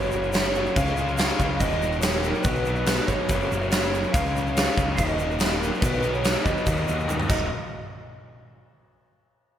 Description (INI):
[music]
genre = classic rock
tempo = 143 BPM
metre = 4/4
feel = straight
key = Eb minor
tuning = A4 = 440 Hz
[part]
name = electric slide guitar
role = melody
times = 0.0-7.5 s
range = Bb4 to F5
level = -29 LUFS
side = right 3 dB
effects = slapback echo
[part]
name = picked twelve-string acoustic guitar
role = accompaniment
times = 0.0-7.5 s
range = B2 to Db5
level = -37 LUFS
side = left 3 dB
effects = none
[part]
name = tonewheel organ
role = sustained chords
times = 0.0-7.6 s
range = Ab3 to Fb5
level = -38 LUFS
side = equal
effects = none
[part]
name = raw garage guitar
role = riff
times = 0.0-7.5 s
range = Eb2 to Eb4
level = -29 LUFS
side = left 3 dB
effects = overdrive, slapback echo
[part]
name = growling picked electric bass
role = bass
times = 0.0-7.5 s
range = Eb1 to D#2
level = -29 LUFS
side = equal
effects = overdrive
[part]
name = tube shaker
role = percussion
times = 0.0-7.5 s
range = none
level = -42 LUFS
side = right 7 dB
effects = none
[part]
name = huge arena drum kit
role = drums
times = 0.3-7.4 s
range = crash cymbal, kick drum, snare drum, toms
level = -25 LUFS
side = equal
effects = none
[sound]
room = moderate lush hall reverb, RT60 2.1 s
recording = big arena sound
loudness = -21 LUFS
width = side -10 dB against mid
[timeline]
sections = 0.0-7.5 A section; 7.5-9.2 B section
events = drum fill 7.1-7.5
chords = 0.0 Gb; 0.8 Db; 1.6 Ebm; 2.5 B; 3.3 Gb; 4.1 Db; 5.0 Ebm; 5.8 B; 6.7 Ebm; 7.5 N.C.